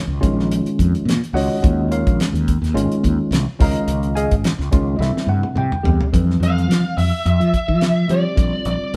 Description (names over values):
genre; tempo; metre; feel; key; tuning
electric jazz fusion; 107 BPM; 4/4; swing 54% on 16ths; unclear; A4 = 441 Hz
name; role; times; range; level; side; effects
mellow fretless electric bass; bass; 0.1-9.0 s; Ab1 to F3; -22 LUFS; equal; none
tine electric piano; accompaniment; 0.2-9.0 s; D3 to Bb5; -24 LUFS; equal; overdrive
damped 70s drum kit; drums; 0.2-9.0 s; hi-hat, kick drum, snare drum, toms; -22 LUFS; equal; none
bluesy overdriven lead guitar; melody; 6.4-9.0 s; D5 to F5; -25 LUFS; equal; distortion
room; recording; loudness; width
light reverb; band playing live in one room; -18 LUFS; mono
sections
0.0-6.1 A section; 6.1-9.0 B section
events
drum fill 5.0-6.1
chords
0.2 Bbm7; 2.8 Absus4; 3.6 Db69; 4.7 Db; 5.0 Cadd9; 6.1 Fsus2; 8.4 Bbadd9